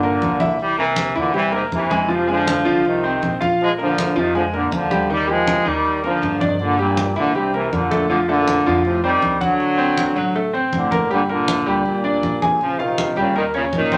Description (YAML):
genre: latin, salsa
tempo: 160 BPM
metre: 4/4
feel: straight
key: C minor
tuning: A4 = 439 Hz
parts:
  - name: bright trombone section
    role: melody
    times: 0.0-14.0 s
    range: G2 to Ab3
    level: -22 LUFS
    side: equal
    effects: none
  - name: bright concert grand piano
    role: accompaniment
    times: 0.0-14.0 s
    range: Eb3 to Ab5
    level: -23 LUFS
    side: equal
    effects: none
  - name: upright bass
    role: bass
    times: 0.0-14.0 s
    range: G1 to G2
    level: -34 LUFS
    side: equal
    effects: none
  - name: congas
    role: percussion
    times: 0.0-14.0 s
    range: none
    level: -28 LUFS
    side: equal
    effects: none
room: wet studio reverb, RT60 0.5 s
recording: none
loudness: -19 LUFS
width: mono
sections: 0.0-14.0 A section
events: none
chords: 0.0 C7sus2; 0.6 C7; 2.1 Fm7; 3.6 Bb7; 5.1 Ebmaj7; 6.6 Gm; 7.3 C5; 8.1 F6; 9.6 D7; 11.1 Gm; 12.6 Bbm7; 13.4 Eb5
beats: 0.22 | 0.60 0.97 1.35 1.72 | 2.10 2.47 2.85 3.22 | 3.60 3.97 4.35 4.72 | 5.10 5.47 5.85 6.22 | 6.60 6.97 7.35 7.73 | 8.10 8.48 8.85 9.23 | 9.60 9.98 10.35 10.73 | 11.10 11.48 11.85 12.23 | 12.60 12.98 13.35 13.73